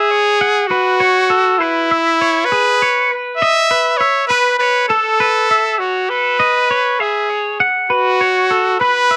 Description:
rock; 67 BPM (dotted quarters); 6/8; straight; A4 = 440 Hz
clear trumpet; melody; 0.0-9.2 s; E4 to E5; -16 LUFS; equal
twangy electric guitar; arpeggios; 0.0-9.2 s; G#4 to F#5; -19 LUFS; equal; subtle chorus
moderate studio reverb, RT60 0.6 s; -15 LUFS; mono
0.0-9.2 A section
0.0 F#madd9; 1.6 C#m7; 3.4 B9sus4; 7.0 F#m9

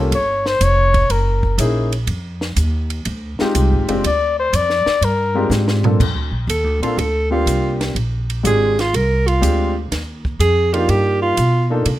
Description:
jazz, small-group swing and bop; 122 BPM; 4/4; swing 69% on 8ths; Bb major from 6.0 s; A4 = 440 Hz
warm concert grand piano; accompaniment; 0.0-11.8 s; Ab3 to A4; -21 LUFS; left 2 dB
upright bass; bass; 0.0-12.0 s; F1 to C3; -18 LUFS; equal
breathy trumpet; melody; 0.1-5.5 s; Bb4 to D5; -17 LUFS; left 3 dB
compact cocktail drum kit; drums; 0.1-12.0 s; crash cymbal, hi-hat, kick drum, ride cymbal, snare drum, toms; -25 LUFS; right 2 dB
bright alto saxophone; second line; 6.5-11.7 s; F4 to Bb4; -18 LUFS; right 2 dB
light reverb; close, detailed microphones, faint mains hum; -15 LUFS; side -14 dB against mid
0.0-6.0 A section; 6.0-12.0 B section
drum fill 5.5-6.0; alto saxophone solo 6.0-12.0
0.1 Db(#11); 1.1 Gb13; 2.1 Fm9; 4.0 Bb13; 6.0 Bbmaj9; 8.0 Bb13; 9.9 Ebmaj9

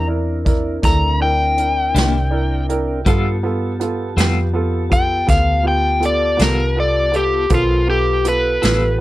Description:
slow blues; 54 BPM (dotted quarters); 12/8; straight; G mixolydian; A4 = 440 Hz
overdriven slide guitar; melody; 0.0-9.0 s; F4 to Bb5; -17 LUFS; left 2 dB
mellow tonewheel organ; sustained chords; 0.0-9.0 s; F#3 to A5; -26 LUFS; equal; slow rotary speaker
vintage muted fingered electric bass; bass; 0.0-9.0 s; A1 to G2; -20 LUFS; equal
clear upright piano; accompaniment; 0.1-9.0 s; B3 to G5; -24 LUFS; right 4 dB
vintage brush drum kit; drums; 0.5-8.8 s; hi-hat, kick drum, snare drum; -19 LUFS; equal
clean electric guitar; accompaniment; 1.9-8.9 s; C3 to A4; -24 LUFS; left 3 dB; tremolo
light reverb; -14 LUFS; side -16 dB against mid
0.0-9.0 A section
upright piano fill 1.9-3.1
0.0 C9; 3.1 G9

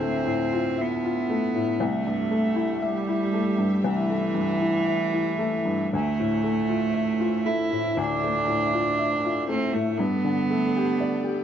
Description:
neoclassical piano and strings; 59 BPM; 4/4; rubato; D dorian; A4 = 441 Hz
rich cello; second line; 0.0-11.4 s; E3 to E4; -25 LUFS; right 4 dB
felt-muted upright piano; accompaniment; 0.0-11.4 s; C2 to E5; -26 LUFS; left 4 dB
warm chamber string section; sustained chords; 0.0-11.4 s; F3 to E5; -35 LUFS; right 1 dB
light reverb; nothing above 7.8 kHz; -22 LUFS; side -9 dB against mid
0.0-11.4 A section
0.0 Dmadd9; 1.8 C6; 5.9 Dmadd9; 10.0 Gadd9

